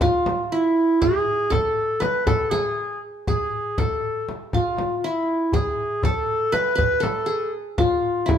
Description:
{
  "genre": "Turkish makam ensemble",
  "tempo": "239 BPM (eighths)",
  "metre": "9/8",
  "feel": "straight",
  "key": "E makam hicaz",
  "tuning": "A4 = 440 Hz",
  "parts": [
    { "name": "dark clarinet", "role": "melody", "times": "0.0-8.4 s", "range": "E4 to B4", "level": "-22 LUFS", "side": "equal", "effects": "none" },
    { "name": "qanun", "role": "second line", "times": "0.0-8.4 s", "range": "E4 to B4", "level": "-26 LUFS", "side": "equal", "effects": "none" },
    { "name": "darbuka", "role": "percussion", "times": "0.0-8.4 s", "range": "none", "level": "-29 LUFS", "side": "equal", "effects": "none" },
    { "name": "frame drum", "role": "percussion", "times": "0.0-8.4 s", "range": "none", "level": "-26 LUFS", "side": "equal", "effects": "none" }
  ],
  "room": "moderate large studio reverb, RT60 1.2 s",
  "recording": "band playing live in one room",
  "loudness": "-20 LUFS",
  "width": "side -8 dB against mid",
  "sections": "0.0-8.4 A section",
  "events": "none",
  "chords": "none"
}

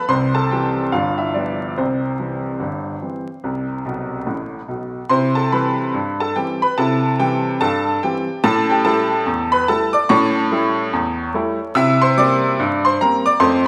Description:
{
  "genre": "ragtime piano",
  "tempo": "72 BPM",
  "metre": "2/4",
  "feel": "swing 59% on 16ths",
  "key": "C major",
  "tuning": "A4 = 444 Hz",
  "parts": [
    { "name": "clear upright piano", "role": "solo", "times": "0.0-13.7 s", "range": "G1 to E6", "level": "-18 LUFS", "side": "equal", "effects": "none" }
  ],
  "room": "wet recital hall reverb, RT60 1.4 s",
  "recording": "recorded in a church or concert hall, vinyl crackle",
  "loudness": "-19 LUFS",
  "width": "mono",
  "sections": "0.0-5.1 A section; 5.1-13.7 B section",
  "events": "upright piano fill 3.9-5.1",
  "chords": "0.1 C; 0.9 G7; 1.8 C; 8.4 A7; 11.8 C7"
}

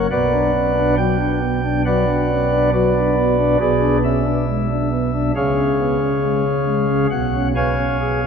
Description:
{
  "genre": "classical, chorale-style piece for pipe organ",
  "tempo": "69 BPM",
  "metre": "4/4",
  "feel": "rubato",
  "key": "B minor",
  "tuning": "A4 = 440 Hz",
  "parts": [
    { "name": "pipe organ, flutes", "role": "solo", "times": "0.0-8.3 s", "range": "B1 to G#5", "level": "-16 LUFS", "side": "equal", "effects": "none" }
  ],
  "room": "wet church reverb, RT60 3.4 s",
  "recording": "none",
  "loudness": "-16 LUFS",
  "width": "side -6 dB against mid",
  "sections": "0.0-8.3 A section",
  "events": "none",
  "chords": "0.1 Bm; 3.6 G#dim/B; 5.4 C#; 7.1 C#7/B"
}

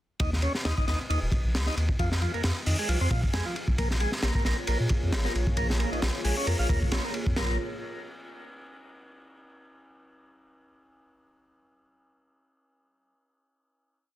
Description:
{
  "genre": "breakbeat, breaks",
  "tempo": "134 BPM",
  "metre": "4/4",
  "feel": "swing 55% on 16ths",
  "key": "Bb minor",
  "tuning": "A4 = 441 Hz",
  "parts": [
    { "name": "tonewheel organ", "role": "riff", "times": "0.2-7.6 s", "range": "Eb3 to F4", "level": "-33 LUFS", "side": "equal", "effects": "slow rotary speaker, digital delay" },
    { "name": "saturated sub bass", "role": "bass", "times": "0.2-7.6 s", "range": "Eb1 to Bb2", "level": "-28 LUFS", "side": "equal", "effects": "none" },
    { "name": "crunchy breakbeat drum kit", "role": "drums", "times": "0.2-7.5 s", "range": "hi-hat, kick drum, ride cymbal, snare drum", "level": "-29 LUFS", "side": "equal", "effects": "none" },
    { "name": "dark analog pad", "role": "sustained chords", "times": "4.2-7.6 s", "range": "Bb3 to Db5", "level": "-36 LUFS", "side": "equal", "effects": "chorus, sidechain pumping" }
  ],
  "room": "light reverb, small room ambience",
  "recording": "dense, heavily limited modern master",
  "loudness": "-25 LUFS",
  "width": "side -14 dB against mid",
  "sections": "0.2-7.4 drop; 7.4-9.2 final chord",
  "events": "drop 0.2-7.4",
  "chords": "0.2 Eb5; 2.0 Fm; 3.8 Bbm7"
}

